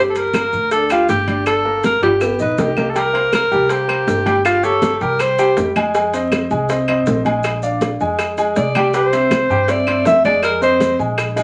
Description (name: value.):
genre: Afro-Cuban jazz.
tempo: 160 BPM.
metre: 4/4.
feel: straight.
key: C minor.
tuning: A4 = 440 Hz.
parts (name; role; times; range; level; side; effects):
breathy alto saxophone; melody; 0.0-5.6, 8.6-11.0 s; F4 to E5; -19 LUFS; equal; none.
clear grand piano; accompaniment; 0.0-11.4 s; G3 to Ab5; -21 LUFS; equal; none.
upright bass; bass; 0.0-11.4 s; G1 to G2; -28 LUFS; equal; none.
congas; percussion; 0.1-11.4 s; none; -27 LUFS; equal; none.
maracas; percussion; 0.2-11.4 s; none; -42 LUFS; equal; none.
timbales; percussion; 0.2-11.4 s; none; -29 LUFS; equal; none.
bongos; percussion; 0.3-11.4 s; none; -28 LUFS; equal; none.
claves; percussion; 0.3-11.4 s; none; -28 LUFS; equal; none.
room: wet studio ambience, RT60 0.5 s.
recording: vinyl crackle, nothing above 10.4 kHz.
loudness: -16 LUFS.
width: mono.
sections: 0.0-3.0 A section; 3.0-11.4 B section.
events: drum fill 2.0-3.0.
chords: 0.0 Gmadd9; 2.2 Gaug; 3.0 C5; 4.5 Gdim; 5.2 C5; 5.9 Fm7; 7.4 Bb9; 8.9 Cadd9; 10.4 Fm7.